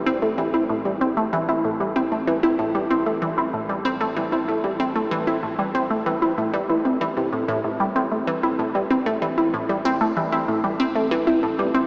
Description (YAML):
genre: ambient, sequencer-driven space music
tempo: 95 BPM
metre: 4/4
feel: straight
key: A minor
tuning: A4 = 441 Hz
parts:
  - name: warm sub bass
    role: bass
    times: 0.0-11.9 s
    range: A1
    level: -46 LUFS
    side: equal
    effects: none
  - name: resonant blip pluck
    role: riff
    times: 0.1-11.9 s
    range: A2 to E4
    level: -22 LUFS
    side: equal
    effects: phaser, analog delay
room: wet huge ambient reverb, RT60 8.0 s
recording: dreamy mix soaked in reverb, small speaker sound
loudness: -23 LUFS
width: mono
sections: 0.0-7.6 A section; 7.6-11.9 B section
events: none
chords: 0.0 Am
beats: | 0.06 0.69 1.33 1.96 | 2.59 3.22 3.85 4.49 | 5.12 5.75 6.38 7.01 | 7.64 8.27 8.91 9.54 | 10.17 10.80 11.43